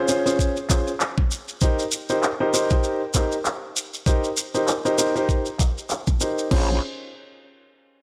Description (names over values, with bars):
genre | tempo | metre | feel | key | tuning
glitch hop | 98 BPM | 4/4 | swing 57% on 16ths | unclear | A4 = 440 Hz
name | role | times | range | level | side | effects
dark baby grand piano | stabs | 0.0-6.8 s | Db4 to C5 | -26 LUFS | equal | sidechain pumping, low-pass filter, tape echo
shekere | percussion | 0.1-6.5 s | none | -30 LUFS | equal | none
drum and bass drum kit | drums | 0.3-6.7 s | crash cymbal, handclaps, hi-hat, snare drum | -32 LUFS | equal | low-pass filter on hats, low-pass filter on snare, low-pass filter on cymbals, low-pass filter on room
electronic kick drum | drums | 0.4-6.7 s | none | -23 LUFS | equal | none
growl bass | bass | 6.5-6.8 s | Bb1 | -25 LUFS | equal | chorus
room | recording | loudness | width
light reverb, digital ambience | dry, gritty hardware recording | -23 LUFS | mono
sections
0.0-6.5 A section; 6.5-8.0 B section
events
filter sweep on drum 0.0-6.5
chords
0.0 Dbmaj7; 1.6 Cm7; 6.5 Bbm7